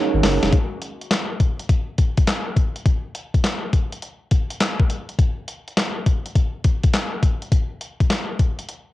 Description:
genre	R&B, new jack swing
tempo	103 BPM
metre	4/4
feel	swing 66% on 16ths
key	unclear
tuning	A4 = 440 Hz
part	mellow tine electric piano	accompaniment	0.0-0.5 s	C#4 to C#5	-20 LUFS	right 8 dB	medium stereo tremolo, cassette tape
part	phased analog pad	sustained chords	0.0-0.5 s	D#3 to F#4	-32 LUFS	left 2 dB	phaser, chorus, cassette tape
part	round analog bass	bass	0.1-0.5 s	E#1 to G#1	-21 LUFS	left 1 dB	none
part	clean 12-bit digital drum machine	drums	0.2-8.9 s	handclaps, hi-hat, kick drum, snare drum	-19 LUFS	left 1 dB	cassette tape
room	little or no reverb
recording	home recording on cassette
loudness	-19 LUFS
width	side -16 dB against mid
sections	0.5-8.9 A section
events	drum fill 0.0-0.5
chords	0.0 F#69; 0.5 N.C.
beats	| 0.53 1.11 1.69 2.27 | 2.86 3.44 4.02 4.61 | 5.19 5.77 6.35 6.93 | 7.52 8.10 8.68

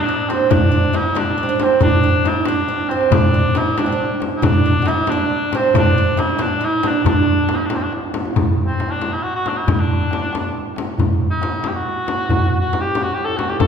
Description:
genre	Persian modal ensemble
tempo	92 BPM (dotted quarters)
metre	6/8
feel	straight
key	D dastgah homayun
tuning	A4 = 442 Hz
part	warm cor anglais	melody	0.0-13.7 s	C4 to A4	-21 LUFS	left 1 dB	none
part	oud	second line	0.0-7.5 s	C4 to F#4	-20 LUFS	right 5 dB	none
part	tombak	percussion	0.1-13.7 s	none	-21 LUFS	right 1 dB	none
part	frame drum	percussion	0.3-13.7 s	none	-21 LUFS	left 4 dB	none
room	wet concert hall reverb, RT60 1.9 s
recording	heard from further back in the room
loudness	-15 LUFS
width	side -7 dB against mid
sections	0.0-8.4 A section; 8.4-13.7 B section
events	drum fill 2.7-3.1, 7.9-8.4, 13.2-13.6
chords	none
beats	| 0.50 1.16 | 1.81 2.46 | 3.12 3.77 | 4.43 5.08 | 5.74 6.39 | 7.05 7.70 | 8.36 9.02 | 9.67 10.33 | 10.98 11.64 | 12.29 12.95 | 13.60

